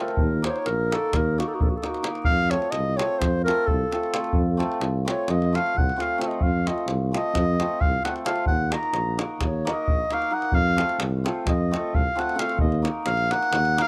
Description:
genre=balkan folk, Balkan wedding band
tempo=262 BPM (eighths)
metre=9/8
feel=straight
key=F phrygian dominant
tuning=A4 = 440 Hz
part: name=mellow clarinet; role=melody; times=0.0-13.9 s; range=Gb4 to Bb5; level=-28 LUFS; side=equal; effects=none
part: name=hammered dulcimer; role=accompaniment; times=0.0-13.9 s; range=A3 to Bb4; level=-32 LUFS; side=equal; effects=none
part: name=davul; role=percussion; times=0.1-13.9 s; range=none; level=-29 LUFS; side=equal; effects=none
part: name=mellow tuba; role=bass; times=0.2-13.8 s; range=Bb1 to F2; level=-28 LUFS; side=equal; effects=none
room=small room ambience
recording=dry, close 1970s-style studio recording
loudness=-24 LUFS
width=mono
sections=0.0-13.9 A section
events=clarinet solo 0.0-13.9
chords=0.2 Ebm; 2.3 F; 8.5 Ebm; 10.5 F; 12.6 Ebm

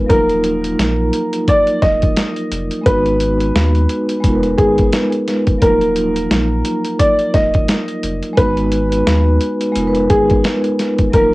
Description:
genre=hip hop, boom-bap hip-hop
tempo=87 BPM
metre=4/4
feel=swing 57% on 16ths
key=Eb harmonic minor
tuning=A4 = 440 Hz
part: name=vibraphone with soft mallets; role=accompaniment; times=0.0-11.3 s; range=F3 to Cb5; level=-17 LUFS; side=equal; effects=cassette tape
part: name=warm sub bass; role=bass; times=0.0-11.3 s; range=D1 to Eb2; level=-20 LUFS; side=equal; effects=transformer saturation
part: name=dark upright piano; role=melody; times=0.1-11.3 s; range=Ab4 to Eb5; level=-17 LUFS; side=equal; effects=cassette tape
part: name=boom bap sampler-style drum kit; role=drums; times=0.1-11.3 s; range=hi-hat, kick drum, snare drum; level=-17 LUFS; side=equal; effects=overdrive, cassette tape
room=light reverb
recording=home recording on cassette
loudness=-13 LUFS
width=side -20 dB against mid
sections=0.0-11.3 A section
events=none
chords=0.1 Ebmadd9; 2.9 Abm7; 4.2 Fm7b5; 5.6 Ebmadd9; 8.4 Abm7; 9.8 Fm7b5

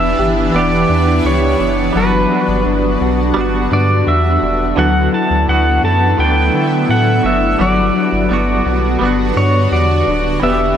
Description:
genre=dream pop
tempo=85 BPM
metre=4/4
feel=straight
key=unclear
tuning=A4 = 441 Hz
part: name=pedal steel guitar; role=melody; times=0.0-10.8 s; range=B4 to A5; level=-17 LUFS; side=equal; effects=tape echo
part: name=direct-recorded clean electric guitar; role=accompaniment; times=0.0-10.8 s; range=D3 to G4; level=-21 LUFS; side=right 5 dB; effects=tremolo, analog chorus, tape echo
part: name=shimmering ambient pad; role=sustained chords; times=0.0-10.8 s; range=B2 to F#4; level=-19 LUFS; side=right 1 dB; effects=chorus, built-in reverb
part: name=mellow electric guitar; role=arpeggios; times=0.0-10.8 s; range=F#3 to A4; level=-19 LUFS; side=left 5 dB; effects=ensemble chorus, tape echo
part: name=sub bass with octave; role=bass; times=0.0-10.7 s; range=D1 to D3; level=-17 LUFS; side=equal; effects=none
part: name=glockenspiel with rubber mallets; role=texture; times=2.4-7.9 s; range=C#6 to F#6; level=-34 LUFS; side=left 3 dB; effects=none
room=moderate plate reverb, RT60 2.9 s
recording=echo-heavy mix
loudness=-12 LUFS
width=side -9 dB against mid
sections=0.0-10.8 A section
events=none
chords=0.0 Em7; 4.8 D69; 7.6 Gmaj7

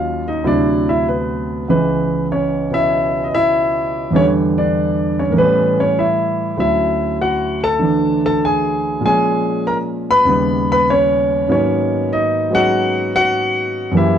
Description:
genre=solo jazz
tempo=98 BPM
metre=4/4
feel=swing 69% on 8ths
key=unclear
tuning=A4 = 444 Hz
part: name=warm concert grand piano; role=solo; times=0.0-14.2 s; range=C#2 to B5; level=-14 LUFS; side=equal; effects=none
room=moderate studio reverb, RT60 0.9 s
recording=dark, warm production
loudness=-14 LUFS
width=side -9 dB against mid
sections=0.0-14.2 A section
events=none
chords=0.4 D9; 1.7 C#m7; 4.1 Em7; 5.4 A7; 6.6 Dmaj9; 9.0 A#m7; 10.3 D#7b13; 11.5 G#m11

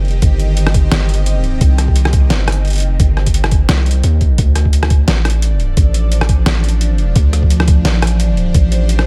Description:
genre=half-time drum and bass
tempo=173 BPM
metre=4/4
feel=swing 56% on 16ths, half-time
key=D phrygian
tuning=A4 = 440 Hz
part: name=bowed-like drone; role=sustained chords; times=0.0-9.1 s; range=Eb3 to Eb5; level=-26 LUFS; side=equal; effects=built-in reverb, phaser, vintage 12-bit sampler grit, sidechain pumping
part: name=long sustained 808-style bass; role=bass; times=0.0-9.1 s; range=G1 to Eb2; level=-16 LUFS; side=equal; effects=none
part: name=boom bap sampler-style drum kit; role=drums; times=0.0-9.1 s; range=hi-hat, rim click, snare drum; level=-21 LUFS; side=equal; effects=none
part: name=electronic kick drum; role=drums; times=0.2-8.6 s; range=none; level=-15 LUFS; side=equal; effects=none
room=little or no reverb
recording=none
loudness=-13 LUFS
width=mono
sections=0.0-9.1 A section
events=none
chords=0.0 Cm; 4.4 Dm

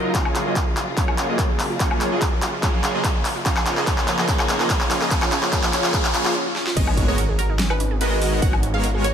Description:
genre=future bass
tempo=145 BPM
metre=4/4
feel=half-time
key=unclear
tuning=A4 = 440 Hz
part: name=warm symphonic string section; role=sustained chords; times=0.0-6.3 s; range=Db3 to Bb4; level=-32 LUFS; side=left 2 dB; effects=sidechain pumping, low-pass filter
part: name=wide unison pluck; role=arpeggios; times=0.0-9.1 s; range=Db4 to Bb4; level=-31 LUFS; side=right 4 dB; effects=sidechain pumping, ping-pong delay
part: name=supersaw chords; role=riff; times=0.0-9.1 s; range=F3 to Eb5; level=-24 LUFS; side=equal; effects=lush chorus, sidechain pumping, low-pass filter
part: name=wide detuned saw bass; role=bass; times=0.0-9.1 s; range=Eb1 to Ab1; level=-28 LUFS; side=equal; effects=none
part: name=riser and impact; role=sound effects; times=0.1-8.4 s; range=none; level=-32 LUFS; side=equal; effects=none
part: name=big-room dance drum kit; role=drums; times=0.1-9.1 s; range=crash cymbal, handclaps, hi-hat, snare drum, woodblock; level=-23 LUFS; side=left 1 dB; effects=high-pass filter on snare, high-pass filter on hats, high-pass filter on perc, high-pass filter on cymbals, high-pass filter on room
part: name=electronic kick drum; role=drums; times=0.1-8.5 s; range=none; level=-22 LUFS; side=equal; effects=none
part: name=wide unison pluck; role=melody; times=6.8-9.1 s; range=Bb4 to Gb5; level=-29 LUFS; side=right 1 dB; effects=sidechain pumping
room=moderate lush hall reverb, RT60 2.3 s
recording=none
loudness=-18 LUFS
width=side -8 dB against mid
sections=0.0-6.8 A section; 6.8-9.1 B section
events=build-up 0.0-6.8; drum fill 0.0-6.4, 6.6; filter sweep on synth arpeggio sound 0.0-6.8; riser 0.1-6.4; break 6.4-6.8; drop 6.8-9.1; impact 6.8-8.4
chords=0.1 Gbmaj9; 3.5 Db13/F; 6.8 Abm11

